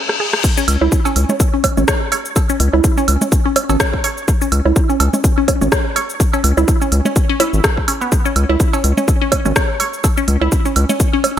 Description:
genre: minimal techno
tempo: 125 BPM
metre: 4/4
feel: swing 56% on 16ths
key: C# minor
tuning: A4 = 440 Hz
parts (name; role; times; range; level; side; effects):
- house drum kit; drums; 0.1-11.3 s; cabasa, crash cymbal, hi-hat, rim click; -21 LUFS; left 1 dB; dub echo
- resonant blip pluck; riff; 0.2-11.2 s; B3 to C#5; -19 LUFS; equal; phaser, sidechain pumping, analog delay
- electronic kick drum; drums; 0.4-11.1 s; none; -16 LUFS; left 1 dB; none
- round analog bass; bass; 0.7-10.9 s; G#1 to C#2; -15 LUFS; left 1 dB; sidechain pumping, high-pass filter
- woodblock, bongos, cowbell and congas; percussion; 0.7-11.3 s; none; -21 LUFS; right 5 dB; analog delay
room: light reverb, digital ambience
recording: echo-heavy mix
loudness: -13 LUFS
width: side -10 dB against mid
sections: 0.4-11.4 A section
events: break 0.0-0.4; drum fill 0.0-0.4; drop 0.4-11.4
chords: 0.4 C#5

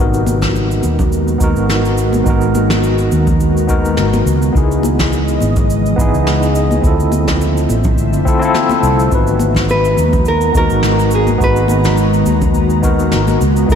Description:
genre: sunset chillout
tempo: 105 BPM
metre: 4/4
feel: swing 55% on 16ths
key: unclear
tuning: A4 = 440 Hz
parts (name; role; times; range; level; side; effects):
- overdriven tine electric piano; accompaniment; 0.0-13.8 s; Cb4 to Cb5; -18 LUFS; moving between left 6 dB and right 4 dB; fast tremolo, auto-pan, ping-pong delay
- ethereal airy pad; sustained chords; 0.0-13.8 s; Db3 to Bb5; -18 LUFS; equal; ensemble chorus, built-in reverb
- fretless electric bass; bass; 0.0-13.8 s; Ab1 to Eb2; -16 LUFS; equal; ensemble chorus
- cabasa and snare drum; drums; 0.1-13.8 s; none; -23 LUFS; equal; none
- congas; percussion; 0.3-13.4 s; none; -24 LUFS; left 2 dB; none
- electronic kick drum; drums; 0.4-13.8 s; none; -17 LUFS; equal; none
- nylon-string guitar; melody; 9.7-13.8 s; Ab4 to Cb5; -17 LUFS; equal; vintage 12-bit sampler grit, diffuse ambient delay
room: moderate lush hall reverb, RT60 2.4 s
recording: dreamy mix soaked in reverb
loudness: -11 LUFS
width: side -8 dB against mid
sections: 0.0-13.8 A section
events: none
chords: 0.0 Abm9; 4.3 Dbm9; 6.8 Dm9; 9.1 Abm9

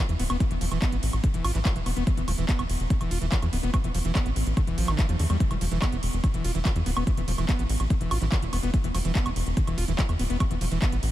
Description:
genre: psychedelic trance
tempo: 144 BPM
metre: 4/4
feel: straight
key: unclear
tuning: A4 = 440 Hz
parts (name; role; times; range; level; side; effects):
- screaming distorted acid line; riff; 0.0-11.0 s; D3 to F4; -31 LUFS; moving between left 3 dB and right 4 dB; distortion, chorus, auto-pan, sidechain pumping, analog delay
- tight sequencer bass; bass; 0.1-11.1 s; D1 to E2; -27 LUFS; equal; none
- techno drum kit; drums; 0.1-11.1 s; handclaps, hi-hat, ride cymbal, woodblock; -32 LUFS; right 1 dB; overdrive, studio reverb
- electronic kick drum; drums; 0.4-10.9 s; none; -24 LUFS; equal; overdrive, studio reverb
room: light reverb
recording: none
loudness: -23 LUFS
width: side -14 dB against mid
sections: 0.0-11.1 A section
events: none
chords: 0.0 E5

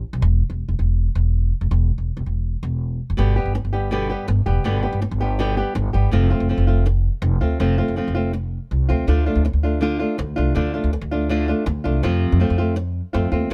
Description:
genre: flamenco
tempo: 162 BPM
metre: 4/4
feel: straight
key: unclear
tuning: A4 = 443 Hz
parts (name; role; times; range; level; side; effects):
- upright bass; bass; 0.1-13.5 s; E1 to F2; -22 LUFS; equal; none
- flamenco guitar; stabs; 3.2-13.5 s; B2 to G4; -24 LUFS; equal; none
room: little or no reverb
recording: close, detailed microphones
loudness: -21 LUFS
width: mono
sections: 0.0-3.2 A section; 3.2-13.5 B section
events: none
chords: 0.2 N.C.; 3.2 G; 6.1 F; 9.1 Dm; 12.0 F

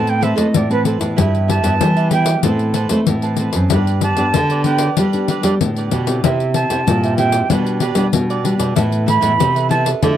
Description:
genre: samba and choro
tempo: 95 BPM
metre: 4/4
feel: straight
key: unclear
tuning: A4 = 437 Hz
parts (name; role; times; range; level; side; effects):
- jazz flute; melody; 0.0-9.9 s; B4 to B5; -18 LUFS; right 4 dB; none
- cavaquinho; accompaniment; 0.0-10.2 s; D4 to A5; -23 LUFS; right 9 dB; none
- nylon-string guitar; accompaniment; 0.0-10.2 s; G2 to B4; -21 LUFS; left 1 dB; none
- nylon-string guitar; bass; 0.0-10.2 s; F#2 to B3; -18 LUFS; equal; none
- pandeiro; percussion; 0.1-10.2 s; none; -20 LUFS; left 8 dB; none
room: light reverb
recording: dry, close 1970s-style studio recording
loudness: -14 LUFS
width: side -11 dB against mid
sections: 0.0-10.2 A section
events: flute solo 0.0-10.2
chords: 0.0 Amadd9; 1.2 Em/G; 2.4 Amadd9; 3.7 G; 6.2 C; 7.5 G/B; 8.8 Asus2

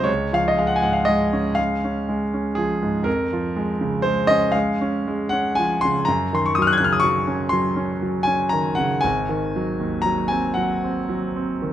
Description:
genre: classical, romantic nocturne for solo piano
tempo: 40 BPM (dotted quarters)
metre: 6/8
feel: uneven beats, rubato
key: Db major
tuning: A4 = 440 Hz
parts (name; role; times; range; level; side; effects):
- clear concert grand piano; solo; 0.0-11.7 s; Ab1 to Ab6; -19 LUFS; equal; none
room: light reverb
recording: close, detailed microphones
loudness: -19 LUFS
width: side -11 dB against mid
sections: 0.0-11.7 A section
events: none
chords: 0.1 Db; 3.1 Db/F; 6.1 Ebm7/Gb; 9.0 Ab7

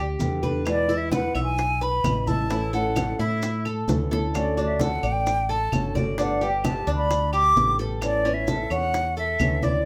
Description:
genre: latin, Cuban son and guajira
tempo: 130 BPM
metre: 4/4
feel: straight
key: unclear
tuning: A4 = 440 Hz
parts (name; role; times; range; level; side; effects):
- Cuban tres; arpeggios; 0.0-9.9 s; C#4 to E5; -32 LUFS; equal; none
- mellow fretless electric bass; bass; 0.0-9.9 s; G1 to A2; -30 LUFS; equal; none
- flamenco guitar; accompaniment; 0.2-9.9 s; B2 to G4; -32 LUFS; equal; none
- bongos; percussion; 0.2-9.9 s; none; -34 LUFS; equal; none
- congas; percussion; 0.2-9.9 s; none; -33 LUFS; equal; none
- maracas; percussion; 0.2-9.9 s; none; -46 LUFS; equal; none
- bright silver concert flute; melody; 0.7-9.9 s; D5 to D6; -27 LUFS; equal; none
- claves; percussion; 0.7-9.6 s; none; -38 LUFS; equal; none
room: moderate small room reverb, RT60 0.6 s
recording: band playing live in one room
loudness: -24 LUFS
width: mono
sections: 0.0-9.9 A section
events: drum fill 3.9-4.3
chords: 0.0 G; 0.7 E; 2.5 A; 4.3 Dmaj7; 6.2 Gadd9; 8.0 Aadd9

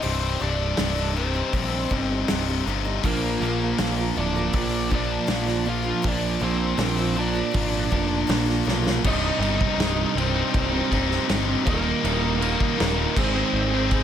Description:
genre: quiet-loud alternative rock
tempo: 80 BPM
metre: 4/4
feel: straight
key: C minor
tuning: A4 = 441 Hz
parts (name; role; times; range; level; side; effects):
- biting lead guitar; melody; 0.0-14.0 s; Bb3 to F5; -28 LUFS; equal; overdrive, slapback echo
- picked steel-string acoustic guitar; arpeggios; 0.0-9.0 s; C2 to Bb4; -31 LUFS; right 4 dB; none
- tight distorted guitar; riff; 0.0-14.0 s; C2 to Ab4; -27 LUFS; left 12 dB; distortion
- growling picked electric bass; bass; 0.0-14.0 s; C1 to B1; -27 LUFS; equal; overdrive
- loose indie drum kit; drums; 0.0-14.0 s; crash cymbal, hi-hat, kick drum, ride cymbal, snare drum; -28 LUFS; equal; none
- crunchy overdriven guitar; riff; 3.0-14.0 s; C2 to Ab4; -28 LUFS; right 10 dB; none
room: moderate studio reverb, RT60 0.6 s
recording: none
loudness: -21 LUFS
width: side -9 dB against mid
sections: 0.0-9.1 A section; 9.1-14.0 B section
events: drum fill 8.7-9.1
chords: 0.0 Cm; 3.0 Bb; 9.1 Cm; 11.7 Eb; 13.2 Ab

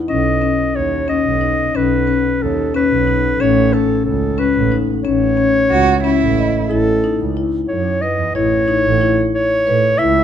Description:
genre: contemporary instrumental, chamber music in an uneven meter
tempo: 182 BPM (eighths)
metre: 5/8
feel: straight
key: unclear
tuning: A4 = 440 Hz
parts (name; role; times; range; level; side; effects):
- marimba with soft mallets; arpeggios; 0.0-10.2 s; C#4 to D#5; -18 LUFS; left 7 dB; none
- mellow clarinet; melody; 0.1-10.2 s; A4 to E5; -18 LUFS; equal; none
- rich double bass; bass; 0.1-10.2 s; A1 to A2; -20 LUFS; right 6 dB; none
- warm cello; second line; 5.7-6.7 s; E4 to F#4; -18 LUFS; right 7 dB; none
room: light reverb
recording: close, detailed microphones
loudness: -13 LUFS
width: side -9 dB against mid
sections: 0.0-6.7 A section; 6.7-10.2 B section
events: none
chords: 0.1 Badd9; 3.4 A; 8.3 Aadd9

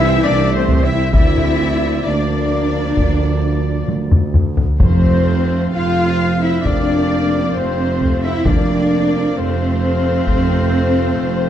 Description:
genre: cinematic, epic orchestral film score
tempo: 66 BPM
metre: 4/4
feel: straight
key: F major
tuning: A4 = 440 Hz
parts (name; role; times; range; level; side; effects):
- warm symphonic violin section; melody; 0.0-11.5 s; C5 to F5; -28 LUFS; left 7 dB; none
- hollow small flute group; second line; 0.0-11.5 s; C5 to F5; -26 LUFS; left 5 dB; none
- rich symphonic violin section; second line; 0.0-11.5 s; C5 to F5; -31 LUFS; left 4 dB; none
- rich symphonic viola section; accompaniment; 0.0-11.5 s; A3 to C4; -27 LUFS; right 2 dB; none
- mellow woodwind section; sustained chords; 0.0-11.5 s; F3 to F5; -30 LUFS; left 3 dB; none
- warm French horn section; sustained chords; 0.0-11.5 s; C4 to F4; -28 LUFS; left 5 dB; none
- warm trombone section; sustained chords; 0.0-11.5 s; E3 to C4; -28 LUFS; right 4 dB; none
- clear trumpet section; stabs; 0.0-11.5 s; C5 to F5; -27 LUFS; left 1 dB; none
- clear symphonic double bass section; bass; 0.0-11.5 s; C2 to F2; -20 LUFS; right 2 dB; none
- rich chamber cello section; bass; 0.0-11.5 s; C4 to F4; -21 LUFS; right 1 dB; none
- warm tuba; bass; 0.0-11.5 s; F1 to D2; -23 LUFS; right 3 dB; none
- taiko ensemble; drums; 0.7-11.1 s; none; -16 LUFS; left 1 dB; none
- timpani; percussion; 4.8-6.2 s; F2; -21 LUFS; equal; none
room: moderate scoring stage reverb, RT60 1.7 s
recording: dark, warm production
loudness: -13 LUFS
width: side -10 dB against mid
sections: 0.0-11.5 A section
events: drum fill 3.9-4.8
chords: 0.0 C; 1.1 Bb/D; 4.8 F

